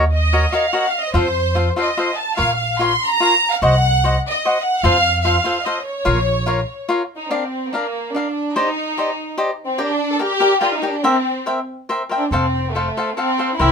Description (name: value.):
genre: mexican folk, mariachi.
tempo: 145 BPM.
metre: 3/4.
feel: rubato.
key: Bb harmonic minor, Bb major from 7.3 s.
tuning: A4 = 440 Hz.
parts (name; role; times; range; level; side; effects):
cavaquinho; accompaniment; 0.0-13.7 s; D4 to A5; -19 LUFS; left 2 dB; none.
upright bass; bass; 0.0-6.6, 12.3-13.7 s; F1 to F2; -19 LUFS; right 1 dB; none.
clear studio violin section; melody; 0.1-13.7 s; A3 to C6; -19 LUFS; right 1 dB; none.
room: moderate studio reverb, RT60 0.5 s.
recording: minimal, uncompressed stereo recording.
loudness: -16 LUFS.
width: side -6 dB against mid.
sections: 0.0-7.3 A section; 7.3-13.7 B section.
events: none.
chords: 0.0 Ebm7; 1.1 F; 2.4 Bbm; 3.6 Cdim; 4.8 F; 6.1 Bbm; 7.3 Bb; 8.6 Cmadd9; 9.8 Gm; 11.0 C7; 12.3 F.